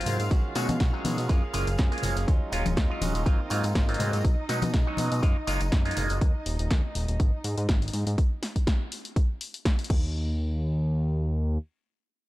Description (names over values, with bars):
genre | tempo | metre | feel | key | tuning
filtered disco house | 122 BPM | 4/4 | swing 54% on 16ths | unclear | A4 = 439 Hz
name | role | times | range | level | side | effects
auto-wah clav | accompaniment | 0.0-6.2 s | Gb3 to F4 | -33 LUFS | right 1 dB | overdrive, phaser, vintage 12-bit sampler grit, sidechain pumping
muted chamber string section | sustained chords | 0.0-8.2 s | Eb4 to F5 | -37 LUFS | equal | sidechain pumping
direct-recorded clean electric guitar | riff | 0.0-4.3 s | D#3 to Ab4 | -36 LUFS | right 4 dB | sidechain pumping
fat analog bass | bass | 0.0-11.6 s | Eb1 to B2 | -28 LUFS | equal | sidechain pumping
punchy analog drum machine | drums | 0.0-10.0 s | crash cymbal, hi-hat, snare drum | -34 LUFS | left 1 dB | overdrive, sidechain pumping on hats, sidechain pumping on cymbals
tambourine and congas | percussion | 0.1-6.2 s | none | -34 LUFS | left 3 dB | sidechain pumping on perc
electronic kick drum | drums | 0.3-10.0 s | none | -24 LUFS | equal | none
dark horn section | melody | 0.6-0.7 s | F#4 | -40 LUFS | left 2 dB | sidechain pumping, digital delay
room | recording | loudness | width
digital ambience | dark, warm production | -24 LUFS | side -17 dB against mid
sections
0.0-10.1 A section; 10.1-12.3 B section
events
drop 0.0-10.1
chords
0.3 B69; 1.3 Gbmaj9; 2.3 Ebm11; 3.3 Ab13; 4.2 B69; 5.2 Gbmaj9; 6.2 N.C.; 7.2 Ab5; 8.2 N.C.